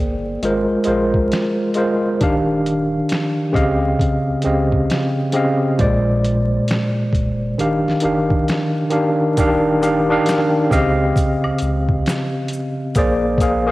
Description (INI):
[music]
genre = lo-fi hip hop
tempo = 67 BPM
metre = 4/4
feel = swing 63% on 16ths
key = Eb major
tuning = A4 = 440 Hz
[part]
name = tine electric piano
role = accompaniment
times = 0.0-13.7 s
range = Bb2 to G5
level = -16 LUFS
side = equal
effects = medium stereo tremolo, cassette tape
[part]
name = soft dub sub bass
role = bass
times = 0.0-13.7 s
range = Eb1 to Db2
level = -26 LUFS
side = equal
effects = none
[part]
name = boom bap sampler-style drum kit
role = drums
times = 0.4-13.7 s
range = finger snaps, hi-hat, kick drum, snare drum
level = -21 LUFS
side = equal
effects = cassette tape
[part]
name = maracas and woodblock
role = percussion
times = 9.4-13.7 s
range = none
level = -35 LUFS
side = left 2 dB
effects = none
[sound]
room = light reverb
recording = home recording on cassette, vinyl crackle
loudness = -15 LUFS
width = side -18 dB against mid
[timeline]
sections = 0.0-9.4 A section; 9.4-13.7 A section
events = none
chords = 0.4 Ab69; 2.2 Ebmaj9; 3.6 Dbmaj9#11; 5.8 Bb9; 7.6 Ebmaj9; 10.7 Dbmaj9#11; 13.0 Bb9